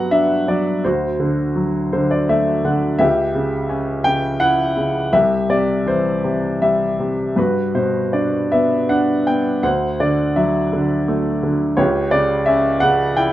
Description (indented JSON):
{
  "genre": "classical, lyrical solo piano",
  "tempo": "78-88 BPM",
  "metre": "3/4",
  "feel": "rubato",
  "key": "G major",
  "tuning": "A4 = 440 Hz",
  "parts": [
    { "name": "clear grand piano", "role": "solo", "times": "0.0-13.3 s", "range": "C2 to G5", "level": "-16 LUFS", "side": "equal", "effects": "none" }
  ],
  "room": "light reverb",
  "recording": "dark, warm production",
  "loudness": "-16 LUFS",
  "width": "side -14 dB against mid",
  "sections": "0.0-13.3 A section",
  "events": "grand piano fill 1.6-3.0",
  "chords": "0.0 Gmaj7; 0.8 D7; 3.0 C#dim; 5.1 C; 7.4 Gmaj7; 9.6 D7; 11.8 C#dim",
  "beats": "0.11 | 0.84 1.56 2.29 | 3.00 3.69 4.40 | 5.13 5.87 6.62 | 7.37 8.14 8.90 | 9.64 10.37 11.09 | 11.79 12.48 13.18"
}